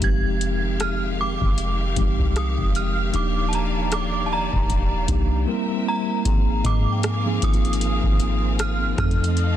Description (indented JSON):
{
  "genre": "contemporary R&B",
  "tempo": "77 BPM",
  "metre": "4/4",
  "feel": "swing 58% on 16ths",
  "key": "unclear",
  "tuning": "A4 = 438 Hz",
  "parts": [
    { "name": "synth chime", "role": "melody", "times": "0.0-9.6 s", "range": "A5 to Ab6", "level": "-28 LUFS", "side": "right 2 dB", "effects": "ensemble chorus, tape echo" },
    { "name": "mellow tine electric piano", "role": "accompaniment", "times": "0.0-9.6 s", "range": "F3 to Bb4", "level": "-26 LUFS", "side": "equal", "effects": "medium stereo tremolo" },
    { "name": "warm studio string section", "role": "sustained chords", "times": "0.0-9.6 s", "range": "Eb3 to F5", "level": "-32 LUFS", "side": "left 2 dB", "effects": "none" },
    { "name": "soft 808-style bass", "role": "bass", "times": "0.0-9.6 s", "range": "Eb1 to Ab2", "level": "-24 LUFS", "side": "equal", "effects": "none" },
    { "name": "booming analog drum machine", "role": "drums", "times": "0.0-9.6 s", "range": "hi-hat, kick drum, rim click", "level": "-23 LUFS", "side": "equal", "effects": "vintage 12-bit sampler grit, soft clipping on snare" },
    { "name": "mallet-like synth pluck", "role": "texture", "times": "6.6-8.6 s", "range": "Eb5 to Ab5", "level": "-42 LUFS", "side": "left 2 dB", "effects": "none" }
  ],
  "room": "little or no reverb",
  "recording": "dense, heavily limited modern master",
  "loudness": "-20 LUFS",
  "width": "side -11 dB against mid",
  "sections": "0.0-6.3 A section; 6.3-9.6 B section",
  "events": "silent gap 5.5-6.3",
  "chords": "0.0 Fm9; 3.1 Ebmaj9; 5.5 C7; 6.3 Ab69; 9.0 F7"
}